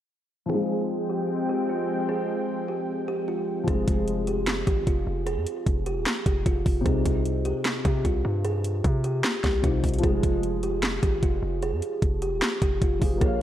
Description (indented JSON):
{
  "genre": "hip hop, trap",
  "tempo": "151 BPM",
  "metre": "4/4",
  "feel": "half-time",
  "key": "F minor",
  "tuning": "A4 = 440 Hz",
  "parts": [
    { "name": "kalimba", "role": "melody", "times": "0.5-13.4 s", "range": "F4 to Ab4", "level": "-29 LUFS", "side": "right 2 dB", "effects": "low-pass filter, tape echo" },
    { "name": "dark concert grand piano", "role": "accompaniment", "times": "0.5-13.4 s", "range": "C3 to F5", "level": "-31 LUFS", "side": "left 2 dB", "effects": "wide subtle chorus, low-pass filter" },
    { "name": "warm analog pad", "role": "sustained chords", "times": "0.5-3.6 s", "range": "F3 to G5", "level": "-30 LUFS", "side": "left 1 dB", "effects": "chorus, low-pass filter" },
    { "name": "hard-hitting 808-style bass", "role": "bass", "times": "3.7-13.4 s", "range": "Eb1 to C3", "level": "-29 LUFS", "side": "equal", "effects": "none" },
    { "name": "trap drum kit", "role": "drums", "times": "3.7-13.3 s", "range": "hi-hat, kick drum, snare drum", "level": "-24 LUFS", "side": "equal", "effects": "none" }
  ],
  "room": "moderate lush hall reverb, RT60 1.6 s",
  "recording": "dreamy mix soaked in reverb",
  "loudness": "-23 LUFS",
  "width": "side -11 dB against mid",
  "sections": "0.5-3.7 A section; 3.7-13.4 B section",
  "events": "filter sweep 0.5-3.7",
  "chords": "0.5 Fmadd9; 6.9 Cm; 10.0 Fmadd9"
}